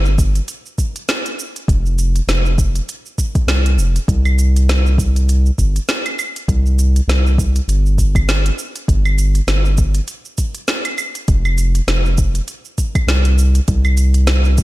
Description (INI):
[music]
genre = sunset chillout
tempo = 100 BPM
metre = 4/4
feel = swing 56% on 16ths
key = unclear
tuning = A4 = 442 Hz
[part]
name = round analog bass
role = bass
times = 0.0-14.6 s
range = F1 to C2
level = -14 LUFS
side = equal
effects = tube saturation
[part]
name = smooth R&B drum kit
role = drums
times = 0.1-14.6 s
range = claves, hi-hat, shaker, snare drum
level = -22 LUFS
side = right 1 dB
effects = none
[part]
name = electronic kick drum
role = drums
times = 0.2-14.6 s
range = none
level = -17 LUFS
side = equal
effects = none
[sound]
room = little or no reverb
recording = none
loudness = -14 LUFS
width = side -18 dB against mid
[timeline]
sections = 0.0-14.6 A section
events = none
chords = none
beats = 0.48 1.08 | 1.68 2.28 2.88 3.48 | 4.08 4.68 5.28 5.88 | 6.48 7.08 7.68 8.28 | 8.88 9.48 10.08 10.68 | 11.28 11.88 12.48 13.08 | 13.68 14.28